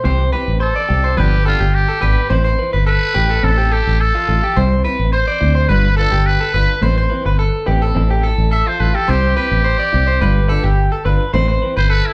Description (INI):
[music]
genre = highlife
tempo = 106 BPM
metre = 4/4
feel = straight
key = C major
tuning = A4 = 440 Hz
[part]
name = clean electric guitar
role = accompaniment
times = 0.0-11.8 s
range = E3 to B4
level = -27 LUFS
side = equal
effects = spring reverb
[part]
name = electric guitar at the edge of break-up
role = arpeggios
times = 0.0-12.1 s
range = F4 to D5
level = -23 LUFS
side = equal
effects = none
[part]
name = fingered electric bass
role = bass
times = 0.1-12.0 s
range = G1 to D2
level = -18 LUFS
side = equal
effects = none
[part]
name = trumpet with metal mute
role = melody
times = 0.6-12.1 s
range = E4 to E5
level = -21 LUFS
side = equal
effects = none
[sound]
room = moderate large studio reverb, RT60 1.1 s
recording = band playing live in one room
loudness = -16 LUFS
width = mono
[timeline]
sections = 0.1-12.1 A section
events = muted trumpet solo 0.1-12.1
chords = 0.1 C; 1.2 G7; 2.3 Amadd9; 3.4 Fmaj7/A; 4.6 C; 5.7 G7; 6.8 Amadd9; 8.0 Fmaj7/A; 9.1 C; 10.2 G7; 11.3 Amadd9